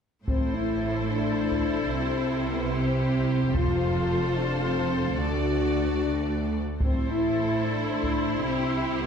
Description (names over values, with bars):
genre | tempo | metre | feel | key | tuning
cinematic, epic orchestral film score | 74 BPM (dotted quarters) | 6/8 | straight | A minor | A4 = 441 Hz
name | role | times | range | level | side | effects
clear symphonic violin section | melody | 0.3-9.1 s | C5 to D5 | -36 LUFS | left 4 dB | none
rich symphonic violin section | second line | 0.3-9.1 s | G4 to A4 | -35 LUFS | left 4 dB | none
warm symphonic viola section | accompaniment | 0.3-9.1 s | E4 to F#4 | -33 LUFS | equal | none
mellow French horn section | sustained chords | 0.3-9.1 s | B3 to F4 | -28 LUFS | left 2 dB | none
clear symphonic cello section | bass | 0.3-9.1 s | D2 to C3 | -33 LUFS | right 2 dB | none
rich symphonic double bass section | bass | 0.3-9.1 s | F1 to D2 | -30 LUFS | right 2 dB | none
solo taiko drums | drums | 0.3-8.3 s | none | -29 LUFS | equal | none
room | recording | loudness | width
wet scoring stage reverb, RT60 1.6 s | heard from further back in the room | -24 LUFS | side -7 dB against mid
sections
0.3-9.1 A section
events
none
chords
0.3 Am; 1.9 C; 3.5 F; 5.2 D; 6.8 Am; 8.4 C